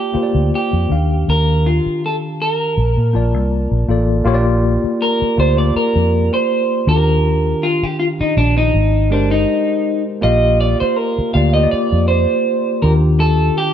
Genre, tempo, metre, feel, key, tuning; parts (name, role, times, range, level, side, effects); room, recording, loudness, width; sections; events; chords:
lush 1970s-style soul; 80 BPM; 4/4; swing 54% on 16ths; Bb major; A4 = 437 Hz
electric guitar through a small old amp; melody; 0.0-13.7 s; D4 to F5; -18 LUFS; right 2 dB; spring reverb
tine electric piano; accompaniment; 0.0-13.7 s; Eb3 to A5; -19 LUFS; left 3 dB; fast stereo tremolo
vintage muted fingered electric bass; bass; 0.1-13.5 s; G1 to Bb2; -15 LUFS; equal
light reverb; dark, warm production; -13 LUFS; side -9 dB against mid
0.0-4.3 A section; 4.3-13.7 B section
clean electric guitar solo 4.3-13.7
0.0 Bb6; 0.9 Ebmaj9; 2.8 Bbmaj7; 4.3 Bb6; 6.9 Ebmaj9; 8.7 Abmaj9; 10.2 Bb6; 12.8 Ebmaj9